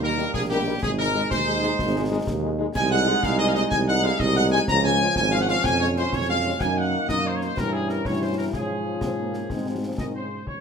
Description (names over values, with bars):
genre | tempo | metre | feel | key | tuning
military-style march for wind band | 124 BPM (dotted quarters) | 6/8 | straight | Db major | A4 = 439 Hz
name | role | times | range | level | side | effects
clear trumpet section | melody | 0.0-10.6 s | G4 to Bb5 | -24 LUFS | left 1 dB | none
mellow French horn section | accompaniment | 0.0-10.3 s | F3 to Bb4 | -30 LUFS | left 6 dB | none
mellow trombone section | sustained chords | 0.0-10.4 s | Db3 to Eb4 | -30 LUFS | right 3 dB | none
mellow tuba | bass | 0.0-10.6 s | Ab1 to Ab2 | -26 LUFS | right 3 dB | none
concert snare drum, concert bass drum and clash cymbals | drums | 0.2-10.6 s | none | -32 LUFS | left 1 dB | none
room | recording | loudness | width
moderate large studio reverb, RT60 1.1 s | minimal, uncompressed stereo recording | -21 LUFS | side -6 dB against mid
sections
0.0-10.5 A section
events
none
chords
0.0 Eb; 0.8 Ab; 2.8 Ab7/C; 4.7 Db; 5.6 Db/F; 6.6 Ebm/Gb; 7.6 Gdim7; 8.5 Db/Ab; 9.5 Ab